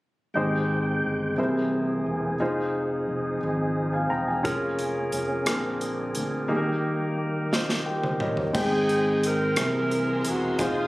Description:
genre	slow gospel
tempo	59 BPM (dotted quarters)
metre	6/8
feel	straight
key	Ab major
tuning	A4 = 436 Hz
part	tonewheel organ	sustained chords	0.3-10.9 s	D3 to G5	-30 LUFS	right 1 dB	fast rotary speaker, chorus vibrato
part	warm concert grand piano	accompaniment	0.4-10.9 s	Ab2 to Bb5	-27 LUFS	equal	none
part	fingered electric bass	bass	0.4-10.9 s	E1 to D2	-32 LUFS	equal	none
part	modern studio drum kit	drums	4.5-10.8 s	crash cymbal, hi-hat, kick drum, rim click, snare drum, toms	-30 LUFS	equal	none
part	breathy alto saxophone	melody	8.6-10.9 s	F4 to Bb4	-26 LUFS	right 1 dB	none
part	warm studio string section	sustained chords	8.6-10.9 s	Ab4 to Eb6	-38 LUFS	equal	none
room	light reverb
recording	recorded on a phone in the room, studio reverb, compression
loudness	-23 LUFS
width	side -19 dB against mid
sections	0.4-8.6 A section; 8.6-10.9 B section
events	grand piano fill 7.5-8.6; drum fill 7.5-8.6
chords	0.4 Abmaj7; 1.4 Caug7; 2.4 Fm7; 4.5 Bbm7/F; 5.5 Bb9; 6.5 Eb; 8.6 Abmaj7; 9.6 Caug7

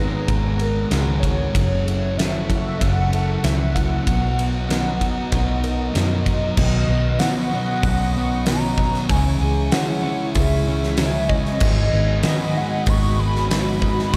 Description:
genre	rock, shoegaze and dream pop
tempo	95 BPM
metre	4/4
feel	straight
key	B major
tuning	A4 = 440 Hz
part	pure sine lead	melody	0.0-14.2 s	B4 to C#6	-30 LUFS	equal	chorus, phaser, analog delay
part	phased analog pad	sustained chords	0.0-14.2 s	E4 to C#6	-34 LUFS	equal	phaser, chorus
part	fingerpicked twelve-string acoustic guitar	arpeggios	0.0-14.2 s	D#3 to A#4	-34 LUFS	equal	lush chorus, analog delay
part	direct-recorded clean electric guitar	riff	0.0-14.2 s	none	barely audible	none	none
part	thick fuzz guitar	riff	0.0-14.2 s	F#2 to C#4	-27 LUFS	equal	distortion, subtle chorus
part	vintage muted fingered electric bass	bass	0.0-14.2 s	F#1 to F#2	-24 LUFS	equal	none
part	huge arena drum kit	drums	0.3-14.2 s	crash cymbal, hi-hat, kick drum, ride cymbal, snare drum	-25 LUFS	equal	none
room	small room ambience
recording	dark, warm production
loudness	-20 LUFS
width	mono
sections	0.0-6.6 A section; 6.6-14.2 B section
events	none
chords	0.0 G#m9; 1.5 F#m7; 4.1 Bmaj7; 6.6 Badd9; 9.1 C#m; 11.6 G#m7

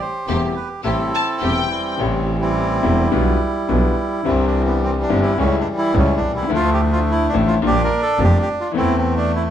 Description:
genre	tango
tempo	107 BPM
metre	4/4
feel	rubato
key	A minor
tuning	A4 = 442 Hz
part	bandoneon	melody	0.0-9.5 s	E3 to C5	-20 LUFS	right 1 dB	none
part	warm grand piano	accompaniment	0.3-9.5 s	E1 to A4	-22 LUFS	left 5 dB	none
part	dark studio string section	stabs	0.3-1.6 s	A3 to G4	-28 LUFS	left 1 dB	none
part	clear double bass	bass	0.3-9.5 s	E1 to E2	-20 LUFS	right 1 dB	none
part	warm studio violin section	second line	1.1-1.9 s	G5 to A5	-23 LUFS	left 4 dB	none
room	moderate stone room reverb, RT60 0.9 s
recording	band playing live in one room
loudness	-16 LUFS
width	side -10 dB against mid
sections	0.0-2.0 A section; 2.0-9.5 B section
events	none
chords	0.0 Am7; 3.1 G7/B; 4.2 Cadd9; 5.4 A7/C#; 6.5 Dmadd9; 7.6 Bb6; 8.7 Am/E

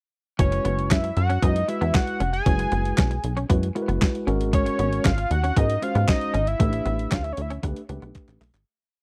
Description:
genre	early-eighties boogie funk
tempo	116 BPM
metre	4/4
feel	straight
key	unclear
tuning	A4 = 440 Hz
part	fat analog lead	melody	0.4-7.5 s	C#5 to G#5	-29 LUFS	equal	chorus
part	mellow tine electric piano	accompaniment	0.4-8.4 s	G#3 to B#4	-32 LUFS	equal	none
part	semi-hollow electric guitar	riff	0.4-8.5 s	G#3 to C#4	-35 LUFS	equal	ensemble chorus
part	plucky analog bass	bass	0.4-8.6 s	E#1 to G#2	-27 LUFS	equal	none
part	clean 12-bit digital drum machine	drums	0.4-8.7 s	handclaps, hi-hat, kick drum, snare drum	-24 LUFS	equal	none
room	digital ambience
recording	dry, close 1970s-style studio recording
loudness	-23 LUFS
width	mono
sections	0.4-8.7 verse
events	fade-out 6.6-8.7; drum fill 8.2-8.7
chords	0.4 F#9sus4; 4.3 G#9sus4; 6.6 A9sus4

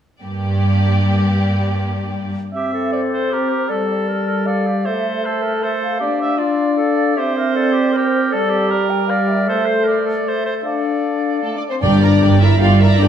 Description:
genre	cinematic, heroic adventure film score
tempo	156 BPM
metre	3/4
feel	straight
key	G dorian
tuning	A4 = 441 Hz
part	rich chamber violin section	melody	0.2-2.3, 11.4-13.1 s	A4 to F5	-27 LUFS	left 2 dB	none
part	rich symphonic violin section	second line	0.2-2.3, 11.8-13.1 s	G4 to Bb5	-25 LUFS	left 1 dB	none
part	rich studio viola section	accompaniment	0.2-2.3, 11.8-13.1 s	Bb3 to D5	-25 LUFS	right 1 dB	none
part	clear symphonic cello section	bass	0.2-2.3, 11.8-13.1 s	G2	-16 LUFS	right 2 dB	none
part	mellow hollow silver concert flute	second line	2.5-11.6 s	C5 to G5	-24 LUFS	left 1 dB	none
part	warm cor anglais	second line	2.5-11.6 s	G4 to E5	-23 LUFS	right 4 dB	none
part	warm French horn section	sustained chords	2.5-13.1 s	G3 to F4	-19 LUFS	left 2 dB	none
part	clear clarinet	second line	2.6-11.6 s	F4 to C5	-23 LUFS	left 2 dB	none
part	clear chamber double bass section	bass	11.8-13.1 s	G1	-18 LUFS	right 3 dB	none
part	timpani	percussion	11.8-12.4 s	G2	-20 LUFS	left 1 dB	none
room	moderate scoring stage reverb, RT60 1.6 s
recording	studio reverb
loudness	-15 LUFS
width	side -9 dB against mid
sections	0.2-2.5 A section; 2.5-11.8 B section; 11.8-13.1 C section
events	build-up 2.5-11.8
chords	0.2 Gm; 2.5 C; 3.7 Gmadd9; 4.9 Am; 6.0 Dm; 7.2 C; 8.3 Gmadd9; 9.5 Am; 10.7 Dm; 11.8 Gm

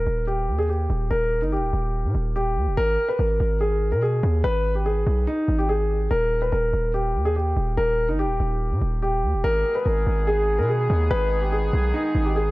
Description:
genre	hip hop, drill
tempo	144 BPM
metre	4/4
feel	half-time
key	G# harmonic minor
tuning	A4 = 440 Hz
part	dark grand piano	melody	0.0-12.5 s	D#4 to B4	-24 LUFS	equal	tape echo
part	hard-hitting 808-style bass	bass	0.0-12.5 s	D#1 to B2	-23 LUFS	equal	none
part	warm brass ensemble	sustained chords	9.4-12.5 s	D#3 to G#4	-31 LUFS	equal	none
room	light reverb, small room ambience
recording	dark, warm production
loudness	-20 LUFS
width	side -19 dB against mid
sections	0.0-2.8 A section; 2.8-12.5 B section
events	none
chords	0.0 D#; 2.8 G#madd9; 6.1 D#; 9.4 G#madd9

